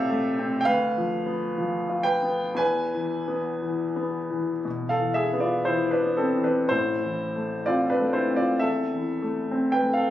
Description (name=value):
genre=classical, romantic nocturne for solo piano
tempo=56-69 BPM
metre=4/4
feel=rubato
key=A minor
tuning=A4 = 441 Hz
part: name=clear baby grand piano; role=solo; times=0.0-10.1 s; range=A1 to G#5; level=-23 LUFS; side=equal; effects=none
room=light reverb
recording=recorded on a phone in the room, club reverb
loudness=-23 LUFS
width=side -12 dB against mid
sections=0.0-10.1 A section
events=none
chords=0.0 Am; 0.7 Bdim/D; 2.6 E; 6.7 Am